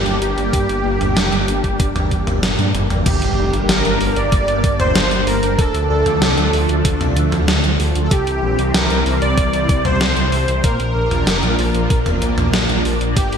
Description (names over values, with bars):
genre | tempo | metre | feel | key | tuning
synthwave | 95 BPM | 4/4 | straight | unclear | A4 = 439 Hz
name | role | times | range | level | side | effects
soft supersaw | melody | 0.0-13.4 s | G4 to D5 | -22 LUFS | equal | cassette tape, ping-pong delay
analog string pad | sustained chords | 0.0-13.4 s | E3 to D4 | -22 LUFS | equal | ensemble chorus, phaser, sidechain pumping
wide detuned saw bass | bass | 0.0-13.4 s | D1 to Bb2 | -20 LUFS | equal | chorus, tube saturation, sidechain pumping
gated 80s digital drum machine | drums | 0.1-13.4 s | crash cymbal, hi-hat, snare drum, toms | -20 LUFS | equal | gated reverb, gated reverb snare
electronic kick drum | drums | 0.5-13.3 s | none | -17 LUFS | equal | none
FM electric piano with soft pad layer | second line | 3.1-13.4 s | G4 to D5 | -29 LUFS | right 2 dB | none
impact | sound effects | 3.1-5.6 s | none | -26 LUFS | equal | none
room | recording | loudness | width
moderate lush hall reverb, RT60 2.6 s | bright 1980s-style digital production | -14 LUFS | side -7 dB against mid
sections
0.0-3.1 A section; 3.1-13.4 B section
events
drum fill 2.4-3.1; impact 3.1-5.6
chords
0.0 Gm; 5.6 Dm; 8.1 C; 10.6 Bb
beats
| 0.53 1.17 1.80 2.43 | 3.06 3.69 4.32 4.96 | 5.59 6.22 6.85 7.48 | 8.11 8.74 9.38 10.01 | 10.64 11.27 11.90 12.53 | 13.17